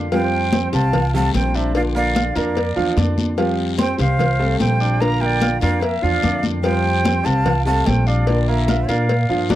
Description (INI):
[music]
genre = latin, Cuban son and guajira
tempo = 147 BPM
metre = 4/4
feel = straight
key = F major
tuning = A4 = 444 Hz
[part]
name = nylon-string guitar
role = accompaniment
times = 0.0-9.6 s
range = D3 to G4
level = -24 LUFS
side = left 3 dB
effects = none
[part]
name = bright grand piano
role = arpeggios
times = 0.0-9.6 s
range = F3 to F6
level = -25 LUFS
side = right 5 dB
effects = none
[part]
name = upright bass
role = bass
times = 0.0-9.6 s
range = Bb1 to Bb2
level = -20 LUFS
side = equal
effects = none
[part]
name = silver concert flute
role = melody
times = 0.1-9.5 s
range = D5 to Bb5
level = -23 LUFS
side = equal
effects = tape echo
[part]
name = breathy bright shakuhachi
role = second line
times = 0.1-9.5 s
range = Bb4 to F5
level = -28 LUFS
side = right 8 dB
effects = none
[part]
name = congas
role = percussion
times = 0.1-9.6 s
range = none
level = -24 LUFS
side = left 2 dB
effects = none
[part]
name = cowbell and bongos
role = percussion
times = 0.1-9.6 s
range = none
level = -26 LUFS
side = left 5 dB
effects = none
[part]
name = guiro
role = percussion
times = 0.1-9.6 s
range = none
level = -35 LUFS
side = left 10 dB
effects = none
[sound]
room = little or no reverb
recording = dry, close 1970s-style studio recording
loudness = -16 LUFS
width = side -13 dB against mid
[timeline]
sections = 0.0-9.6 A section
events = none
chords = 0.1 Fadd9; 1.7 Bb; 3.4 Fadd9; 5.0 Bb; 6.6 Fadd9; 8.3 Bb